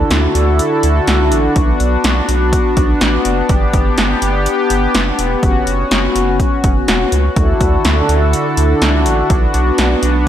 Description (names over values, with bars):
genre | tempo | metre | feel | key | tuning
synth-pop | 124 BPM | 4/4 | straight | B minor | A4 = 440 Hz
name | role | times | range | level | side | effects
chorused pulse-width pad | sustained chords | 0.0-10.3 s | D3 to A4 | -15 LUFS | left 1 dB | none
round analog bass | bass | 0.0-10.3 s | E1 to D2 | -16 LUFS | equal | none
punchy analog drum machine | drums | 0.1-10.1 s | hi-hat, kick drum, snare drum | -16 LUFS | equal | overdrive, gated reverb
room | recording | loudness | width
light reverb | none | -11 LUFS | side -10 dB against mid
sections
0.0-10.3 A section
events
none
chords
0.0 Dadd9; 1.6 Bm; 3.5 G; 5.4 F#sus4; 7.4 Dadd9; 9.3 Bm